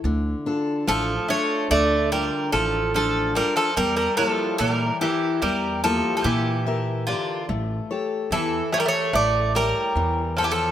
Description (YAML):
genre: greek folk, Greek bouzouki band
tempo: 145 BPM (eighths)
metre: 9/8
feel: straight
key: D harmonic minor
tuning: A4 = 440 Hz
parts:
  - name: upright bass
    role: bass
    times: 0.0-10.7 s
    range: A1 to Bb2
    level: -26 LUFS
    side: right 1 dB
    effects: none
  - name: picked steel-string acoustic guitar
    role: accompaniment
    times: 0.1-10.7 s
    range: D3 to E5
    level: -27 LUFS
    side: left 3 dB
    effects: none
  - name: Greek bouzouki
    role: melody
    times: 0.9-10.7 s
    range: F4 to D5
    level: -23 LUFS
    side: equal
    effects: slapback echo
  - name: Greek bouzouki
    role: second line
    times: 0.9-10.7 s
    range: D3 to A3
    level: -26 LUFS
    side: right 2 dB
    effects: none
room: moderate plate reverb, RT60 2.7 s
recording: none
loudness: -20 LUFS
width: side -10 dB against mid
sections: 0.0-10.7 A section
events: none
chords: 0.0 Dm; 3.8 Edim; 7.5 A7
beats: | 0.04 0.46 0.87 1.29 1.70 2.11 2.53 2.94 3.35 | 3.77 4.18 4.59 5.00 5.42 5.83 6.24 6.65 7.07 | 7.48 7.89 8.30 8.72 9.13 9.54 9.96 10.37